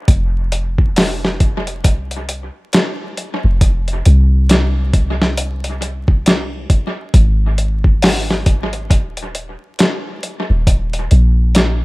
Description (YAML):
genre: trip hop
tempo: 68 BPM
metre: 4/4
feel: swing 60% on 16ths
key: F minor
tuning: A4 = 442 Hz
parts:
  - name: soft 808-style bass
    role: bass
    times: 0.1-11.8 s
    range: Eb1 to C2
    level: -15 LUFS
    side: equal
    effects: none
  - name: dusty soul sampler-style drum kit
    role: drums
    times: 0.1-11.8 s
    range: hi-hat, kick drum, snare drum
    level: -14 LUFS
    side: equal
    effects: dub echo
room: digital ambience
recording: echo-heavy mix, vinyl crackle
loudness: -13 LUFS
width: side -22 dB against mid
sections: 0.1-11.8 A section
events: none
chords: none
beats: | 0.08 0.96 1.85 2.73 | 3.61 4.49 5.38 6.26 | 7.14 8.02 8.90 9.79 | 10.67 11.55